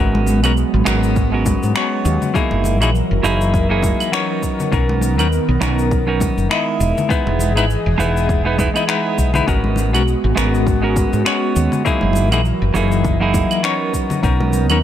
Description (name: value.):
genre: sunset chillout.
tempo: 101 BPM.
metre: 4/4.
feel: swing 56% on 16ths.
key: unclear.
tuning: A4 = 444 Hz.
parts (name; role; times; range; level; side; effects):
semi-hollow electric guitar; accompaniment; 0.0-14.8 s; F#3 to D#5; -19 LUFS; equal; auto-pan, digital delay.
airy breathy pad; sustained chords; 0.0-14.8 s; D#3 to D#5; -22 LUFS; right 1 dB; chorus.
woody fretless electric bass; bass; 0.0-14.8 s; E1 to G#2; -18 LUFS; equal; lush chorus.
congas; percussion; 0.1-14.7 s; none; -26 LUFS; left 4 dB; none.
electronic shaker, claves and finger snaps; drums; 0.3-14.8 s; none; -24 LUFS; right 1 dB; overdrive.
electronic kick drum; drums; 1.2-14.4 s; none; -20 LUFS; equal; overdrive.
room: light reverb.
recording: none.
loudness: -14 LUFS.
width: side -10 dB against mid.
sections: 0.0-14.8 A section.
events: none.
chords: 0.0 G#m11; 2.3 F#13; 6.8 Emaj7; 9.5 G#m11; 11.9 F#13.